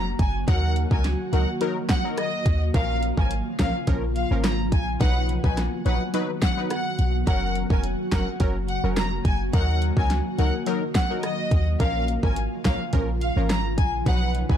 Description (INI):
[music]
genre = dancehall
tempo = 106 BPM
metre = 4/4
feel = straight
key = Eb minor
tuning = A4 = 439 Hz
[part]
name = clear studio violin section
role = melody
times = 0.0-14.6 s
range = Eb5 to Bb5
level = -30 LUFS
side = left 1 dB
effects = tape echo
[part]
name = ethereal airy pad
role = sustained chords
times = 0.0-14.6 s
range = Db3 to Gb4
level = -30 LUFS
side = equal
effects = ensemble chorus, built-in reverb, sidechain pumping
[part]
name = warm 808-style bass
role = bass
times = 0.0-14.6 s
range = F1 to Eb2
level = -25 LUFS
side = equal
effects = none
[part]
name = impact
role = sound effects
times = 0.0-0.5 s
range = none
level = barely audible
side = none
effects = none
[part]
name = pop drum kit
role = drums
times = 0.2-14.6 s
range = hi-hat, kick drum, rim click, snare drum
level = -24 LUFS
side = equal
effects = none
[part]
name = synth brass stab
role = accompaniment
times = 0.5-14.6 s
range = F3 to B4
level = -30 LUFS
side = left 2 dB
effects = chorus
[sound]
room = little or no reverb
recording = dark, warm production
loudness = -21 LUFS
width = side -9 dB against mid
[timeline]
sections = 0.0-14.6 A section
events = impact 0.0-0.5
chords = 0.5 Ebm; 2.7 Bbm; 5.0 B; 7.3 Gb; 9.5 Ebm; 11.8 Bbm; 14.1 B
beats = | 0.48 1.04 1.61 2.18 | 2.74 3.31 3.88 4.44 | 5.01 5.57 6.14 6.71 | 7.27 7.84 8.40 8.97 | 9.54 10.10 10.67 11.23 | 11.80 12.37 12.93 13.50 | 14.06